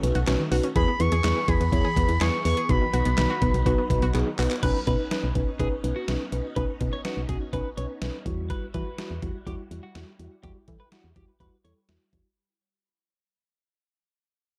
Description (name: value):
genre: synth-pop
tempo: 124 BPM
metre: 4/4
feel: straight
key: unclear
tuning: A4 = 440 Hz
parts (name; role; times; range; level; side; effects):
- mellow tine electric piano; accompaniment; 0.0-12.3 s; G3 to C#5; -32 LUFS; equal; low-pass filter
- phased string machine; sustained chords; 0.0-12.3 s; D#3 to G#4; -40 LUFS; equal; ensemble chorus, phaser, low-pass filter
- unison pluck; arpeggios; 0.0-4.6 s; D#3 to G#4; -36 LUFS; equal; tape echo
- solid FM bass; bass; 0.0-12.2 s; B1 to E3; -29 LUFS; equal; none
- detuned 8-bit digital drum machine; drums; 0.0-12.2 s; crash cymbal, handclaps, hi-hat, kick drum, snare drum; -32 LUFS; equal; none
- expressive portamento lead; melody; 0.8-4.1 s; B5 to C#6; -31 LUFS; equal; chorus, tape echo
- twelve-string electric guitar; second line; 4.6-11.7 s; F#4 to C#5; -40 LUFS; equal; subtle chorus, tape echo
room: digital ambience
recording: dry, gritty hardware recording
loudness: -25 LUFS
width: mono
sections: 0.0-4.6 A section; 4.6-12.4 B section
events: drum fill 4.1-4.6; fade-out 4.6-12.4; filter sweep 4.6-12.4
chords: 0.0 Badd9; 0.8 E; 2.7 B; 4.6 Badd9; 8.3 Emadd9